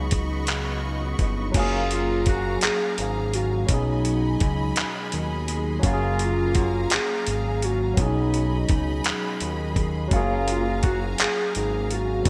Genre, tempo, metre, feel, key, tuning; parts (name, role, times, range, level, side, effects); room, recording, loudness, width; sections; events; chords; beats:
slow six-eight R&B; 56 BPM (dotted quarters); 6/8; straight; F# major; A4 = 440 Hz
mellow electric guitar; second line; 0.0-12.3 s; B2 to G#4; -38 LUFS; equal
barky tine electric piano; accompaniment; 0.0-12.3 s; F#3 to E#5; -32 LUFS; equal
rich studio string section; sustained chords; 0.0-12.3 s; F#3 to C#6; -36 LUFS; equal
fat analog bass; bass; 0.0-12.3 s; F#1 to D#2; -29 LUFS; equal
dusty soul sampler-style drum kit; drums; 0.1-12.3 s; crash cymbal, handclaps, hi-hat, kick drum; -27 LUFS; equal; gated reverb
warm horn section; stabs; 1.5-2.5, 5.8-6.8, 10.1-11.1 s; C#3 to F#4; -36 LUFS; equal
hollow clarinet-like synth lead; melody; 1.9-12.3 s; D#4 to G#4; -30 LUFS; equal; chorus
moderate lush hall reverb, RT60 3.0 s; bright 1980s-style digital production; -24 LUFS; mono
0.0-1.5 A section; 1.5-12.3 B section
0.0 C#9sus4; 1.5 F#maj9; 3.7 B6; 5.8 F#maj9; 8.0 B6; 10.1 F#maj9
0.47 | 1.54 2.62 | 3.69 4.76 | 5.83 6.90 | 7.97 9.04 | 10.12 11.19 | 12.26